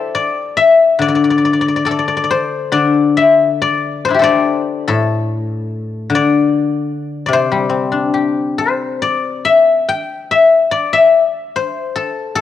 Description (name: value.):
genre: chinese traditional, Chinese solo plucked strings.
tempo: 67-77 BPM.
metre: 2/4.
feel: rubato.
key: D shang mode.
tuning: A4 = 439 Hz.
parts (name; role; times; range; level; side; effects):
guzheng; solo; 0.0-12.4 s; A2 to D6; -12 LUFS; left 4 dB; cassette tape.
room: moderate lush hall reverb, RT60 2.3 s.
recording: home recording on cassette.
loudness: -12 LUFS.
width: side -11 dB against mid.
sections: 0.0-2.8 A section; 2.8-12.4 B section.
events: none.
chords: none.